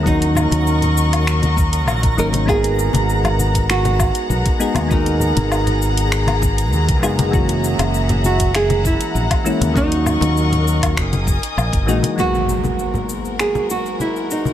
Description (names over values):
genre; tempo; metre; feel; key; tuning
sunset chillout; 99 BPM; 4/4; straight; G# minor; A4 = 436 Hz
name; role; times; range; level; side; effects
soft electric-piano-like synth keys; accompaniment; 0.0-14.5 s; D#3 to A#4; -22 LUFS; moving between left 4 dB and right 3 dB; chorus, auto-pan, vintage 12-bit sampler grit, tape echo
dark studio string section; sustained chords; 0.0-14.5 s; G#2 to D#6; -25 LUFS; left 3 dB; vintage 12-bit sampler grit
modern bright fingered electric bass; bass; 0.0-12.0 s; F#1 to D#2; -19 LUFS; equal; none
twinkling granular texture; texture; 0.0-12.2 s; A#5; -30 LUFS; right 2 dB; built-in reverb
nylon-string guitar; melody; 0.1-14.5 s; D#4 to A#4; -22 LUFS; right 2 dB; tape echo
deep house drum kit; drums; 0.1-14.5 s; cabasa, finger snaps, hi-hat, woodblock; -24 LUFS; left 3 dB; overdrive, small room ambience
electronic kick drum; drums; 0.1-11.8 s; none; -20 LUFS; equal; small room ambience
congas; percussion; 0.4-14.5 s; none; -23 LUFS; left 2 dB; none
impact; sound effects; 12.2-14.5 s; none; -25 LUFS; equal; none
room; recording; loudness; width
light reverb; none; -15 LUFS; side -11 dB against mid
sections
0.0-12.2 A section; 12.2-14.5 B section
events
impact 12.2-14.5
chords
0.1 D#m7; 2.5 G#m9; 7.3 F#9; 9.8 D#m7; 11.0 F#13; 12.2 G#m9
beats
| 0.06 0.67 1.27 1.88 | 2.48 3.09 3.69 4.30 | 4.91 5.51 6.12 6.72 | 7.33 7.94 8.54 9.15 | 9.76 10.36 10.97 11.57 | 12.18 12.79 13.39 14.00